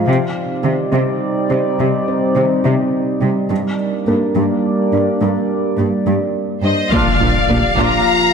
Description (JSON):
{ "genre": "cinematic", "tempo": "70 BPM (dotted quarters)", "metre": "6/8", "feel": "straight", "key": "unclear", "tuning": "A4 = 440 Hz", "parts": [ { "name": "analog drone", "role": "sustained chords", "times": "0.0-8.3 s", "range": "F3 to F5", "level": "-18 LUFS", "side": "right 1 dB", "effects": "chorus" }, { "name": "rich studio cello section", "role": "bass", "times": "0.0-7.9 s", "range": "G2 to C3", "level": "-20 LUFS", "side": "right 2 dB", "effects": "none" }, { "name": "felt-muted upright piano", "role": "texture", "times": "0.0-8.3 s", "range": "Bb3 to C5", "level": "-25 LUFS", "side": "left 3 dB", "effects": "tape echo" }, { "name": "thumb-piano-like synth pluck", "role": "arpeggios", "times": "0.1-8.0 s", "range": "C3 to Bb4", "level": "-23 LUFS", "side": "left 2 dB", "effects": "chorus, tape echo" }, { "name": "rich symphonic violin section", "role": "melody", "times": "6.6-8.3 s", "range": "Eb5 to Bb5", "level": "-17 LUFS", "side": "left 3 dB", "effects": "none" }, { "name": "rich symphonic violin section", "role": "second line", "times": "6.6-8.3 s", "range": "C5 to F5", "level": "-19 LUFS", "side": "left 3 dB", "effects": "none" }, { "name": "clear symphonic viola section", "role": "accompaniment", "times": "6.9-8.0 s", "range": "Bb3 to F4", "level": "-21 LUFS", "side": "right 1 dB", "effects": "none" }, { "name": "rich symphonic double bass section", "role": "bass", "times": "6.9-7.9 s", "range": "Bb1", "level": "-22 LUFS", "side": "right 2 dB", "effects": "none" }, { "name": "impact", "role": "sound effects", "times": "6.9-8.3 s", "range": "none", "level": "-21 LUFS", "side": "left 1 dB", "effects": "none" } ], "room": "moderate scoring stage reverb, RT60 1.5 s", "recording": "none", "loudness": "-14 LUFS", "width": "side -6 dB against mid", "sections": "0.0-6.9 A section; 6.9-8.3 B section", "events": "build-up 0.0-6.9; impact 6.9-8.3", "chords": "0.1 Cmadd9; 3.5 Gm; 6.9 Bb" }